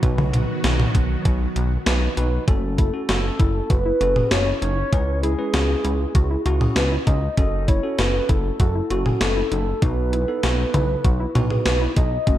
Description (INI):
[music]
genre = synth-pop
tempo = 98 BPM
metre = 4/4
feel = straight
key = F# dorian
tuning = A4 = 440 Hz
[part]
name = bell-like tine electric piano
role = accompaniment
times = 0.0-12.4 s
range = A3 to B4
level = -30 LUFS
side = right 1 dB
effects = fast stereo tremolo
[part]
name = string machine, violas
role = sustained chords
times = 0.0-2.5 s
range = D#3 to F#4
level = -28 LUFS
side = right 1 dB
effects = ensemble chorus
[part]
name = chorused synth bass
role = bass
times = 0.0-12.4 s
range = F#1 to C#2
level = -23 LUFS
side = equal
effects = none
[part]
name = gated 80s digital drum machine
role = drums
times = 0.0-12.4 s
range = hi-hat, kick drum, snare drum, toms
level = -21 LUFS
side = equal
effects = gated reverb, gated reverb snare
[part]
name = soft octave-layered synth lead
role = melody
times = 2.5-12.4 s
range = F#4 to D#5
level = -25 LUFS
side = equal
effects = chorus, phaser, slapback echo
[part]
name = soft round pluck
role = arpeggios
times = 2.5-12.4 s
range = C#4 to G#4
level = -30 LUFS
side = left 3 dB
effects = chorus, slapback echo
[sound]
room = light reverb, digital ambience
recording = dark, warm production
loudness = -18 LUFS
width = side -13 dB against mid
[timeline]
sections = 0.0-2.5 A section; 2.5-12.4 B section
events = none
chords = 0.0 B; 2.5 F#m; 4.9 C#m7; 7.4 F#m; 9.8 B